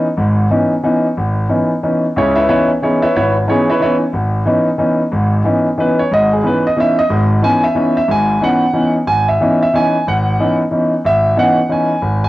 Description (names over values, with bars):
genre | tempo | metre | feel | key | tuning
jazz | 182 BPM | 3/4 | swing 63% on 8ths | C# minor | A4 = 442 Hz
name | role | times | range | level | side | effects
warm concert grand piano | solo | 0.0-12.3 s | G#1 to G#5 | -12 LUFS | equal | cassette tape
room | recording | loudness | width
wet spring reverb, RT60 1.1 s, studio ambience | home recording on cassette | -12 LUFS | side -16 dB against mid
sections
0.0-2.2 A section; 2.2-12.3 B section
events
none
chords
0.0 C#m9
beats
| 0.17 0.50 0.83 | 1.16 1.49 1.82 | 2.15 2.48 2.81 | 3.14 3.47 3.80 | 4.13 4.46 4.79 | 5.12 5.45 5.78 | 6.11 6.44 6.76 | 7.09 7.42 7.75 | 8.08 8.41 8.74 | 9.07 9.40 9.72 | 10.05 10.38 10.71 | 11.04 11.37 11.70 | 12.03